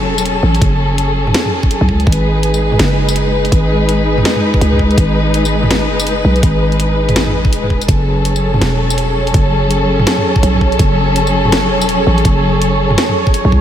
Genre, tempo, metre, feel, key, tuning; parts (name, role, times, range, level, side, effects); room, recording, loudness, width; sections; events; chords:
half-time drum and bass; 165 BPM; 4/4; swing 60% on 16ths, half-time; F# dorian; A4 = 440 Hz
dark studio string section; sustained chords; 0.0-13.6 s; F#3 to B4; -15 LUFS; left 1 dB; sidechain pumping
growling 808-style bass; bass; 0.0-13.6 s; D#1 to C#2; -15 LUFS; equal
drum and bass drum kit; drums; 0.2-13.5 s; hi-hat, snare drum, tambourine, toms; -19 LUFS; equal; studio ambience
electronic kick drum; drums; 0.6-13.6 s; -14 LUFS; equal; studio ambience
pulsing gated texture; texture; 8.2-13.6 s; C#5; -21 LUFS; right 6 dB; chorus, built-in reverb
moderate huge ambient reverb, RT60 3.9 s; dreamy mix soaked in reverb; -11 LUFS; side -10 dB against mid
0.0-13.6 A section
0.0 F#m; 2.1 G#m; 7.9 F#m